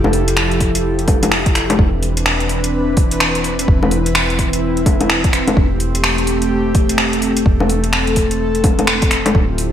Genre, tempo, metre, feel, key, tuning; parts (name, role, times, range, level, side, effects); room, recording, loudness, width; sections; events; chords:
future garage; 127 BPM; 4/4; swing 62% on 16ths; A minor; A4 = 440 Hz
airy breathy pad; sustained chords; 0.0-9.7 s; D3 to B4; -18 LUFS; equal; chorus, sidechain pumping
soft 808-style bass; bass; 0.0-9.7 s; D1 to F1; -21 LUFS; equal; tube saturation, sidechain pumping
deep house drum kit; drums; 0.0-9.7 s; bongos, finger snaps, hi-hat; -17 LUFS; left 1 dB; overdrive, gated reverb
electronic kick drum; drums; 0.6-9.5 s; -15 LUFS; equal; overdrive
light reverb; bright 1980s-style digital production, vinyl crackle; -13 LUFS; side -10 dB against mid
0.0-9.7 A section
0.0 Fmaj9; 1.8 Cmaj7/E; 5.6 Am7/E